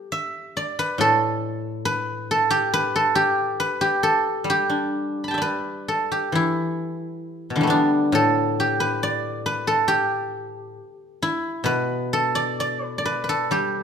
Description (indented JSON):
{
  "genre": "chinese traditional, Chinese solo plucked strings",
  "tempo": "63-70 BPM",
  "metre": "2/4",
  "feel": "rubato",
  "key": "G gong mode",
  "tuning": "A4 = 440 Hz",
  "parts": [
    { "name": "guzheng", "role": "solo", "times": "0.0-13.8 s", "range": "A2 to B5", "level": "-20 LUFS", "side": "equal", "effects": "none" }
  ],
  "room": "moderate recital hall reverb, RT60 1.4 s",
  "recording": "minimal, uncompressed stereo recording",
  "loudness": "-20 LUFS",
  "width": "side -7 dB against mid",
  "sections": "0.0-6.3 A section; 6.3-13.8 B section",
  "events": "none",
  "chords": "none",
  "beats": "0.12 | 1.00 1.86 | 2.72 3.58 | 4.47 5.40 | 6.34 7.25 | 8.14 9.02 | 9.89 10.78 | 11.67 12.59 | 13.53"
}